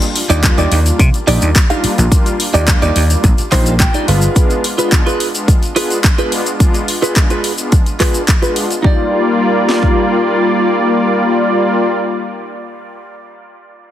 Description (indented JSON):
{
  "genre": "nu-disco, nu disco",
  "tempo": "107 BPM",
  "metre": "4/4",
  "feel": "straight",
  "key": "Eb major",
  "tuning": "A4 = 440 Hz",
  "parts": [
    { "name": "warm analog pad", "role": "accompaniment", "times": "0.0-11.9 s", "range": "G3 to D5", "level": "-16 LUFS", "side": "left 1 dB", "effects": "chorus, dub echo" },
    { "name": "house drum kit", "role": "drums", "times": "0.0-8.8 s", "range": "handclaps, hi-hat", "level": "-19 LUFS", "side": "left 1 dB", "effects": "studio reverb" },
    { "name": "tube shaker", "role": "percussion", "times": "0.0-8.8 s", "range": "none", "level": "-25 LUFS", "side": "left 2 dB", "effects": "none" },
    { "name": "direct-recorded clean electric guitar", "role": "riff", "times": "0.3-12.6 s", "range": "Eb4 to G5", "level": "-19 LUFS", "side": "right 2 dB", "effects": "wide subtle chorus, low-pass filter, dub echo" },
    { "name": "vintage slap bass", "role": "bass", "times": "0.3-4.3 s", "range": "G1 to C3", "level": "-13 LUFS", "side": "equal", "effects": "tube saturation" },
    { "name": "house drum kit", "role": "drums", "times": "0.4-10.0 s", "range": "kick drum, snare drum", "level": "-12 LUFS", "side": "equal", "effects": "studio reverb" }
  ],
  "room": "light reverb",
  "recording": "heavily compressed radio sound",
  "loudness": "-11 LUFS",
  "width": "side -12 dB against mid",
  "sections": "0.0-8.8 A section; 8.8-11.1 B section",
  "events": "clean electric guitar fill 3.5-4.4",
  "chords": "0.0 Ebmaj7; 4.1 G7b9 (rootless); 8.8 Ebmaj7"
}